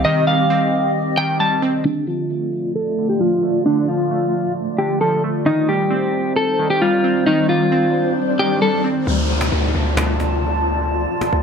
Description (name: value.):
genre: hip hop, trap.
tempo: 133 BPM.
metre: 4/4.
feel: half-time.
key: D phrygian.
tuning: A4 = 441 Hz.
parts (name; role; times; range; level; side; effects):
clean electric guitar; melody; 0.0-8.8 s; D4 to A5; -18 LUFS; equal; low-pass filter, ping-pong delay.
glassy digital keys; accompaniment; 0.0-9.1 s; D3 to C4; -21 LUFS; right 2 dB; chorus, low-pass filter.
granular cloud pad; sustained chords; 0.0-11.4 s; G3 to A5; -23 LUFS; left 1 dB; built-in reverb, low-pass filter.
distorted 808-style bass; bass; 0.0, 9.1-11.4 s; D2; -20 LUFS; equal; distortion.
swell and downlifter; sound effects; 7.3-11.4 s; none; -26 LUFS; left 1 dB; none.
cajon; drums; 9.4-11.3 s; none; -24 LUFS; equal; none.
room: light reverb, digital ambience.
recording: none.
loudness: -16 LUFS.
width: side -6 dB against mid.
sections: 0.0-1.9 A section; 1.9-9.1 B section; 9.1-11.4 C section.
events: break 0.0-1.9, 9.1-11.4; filter sweep 1.9-9.1; swell 7.3-9.1.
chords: 0.0 Cm; 1.9 Dm; 5.5 Cm; 9.1 Dm.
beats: | 0.05 0.50 0.95 1.40 | 1.85 2.30 2.75 3.21 | 3.66 4.11 4.56 5.01 | 5.46 5.91 6.36 6.82 | 7.27 7.72 8.17 8.62 | 9.07 9.52 9.97 10.42 | 10.88 11.33.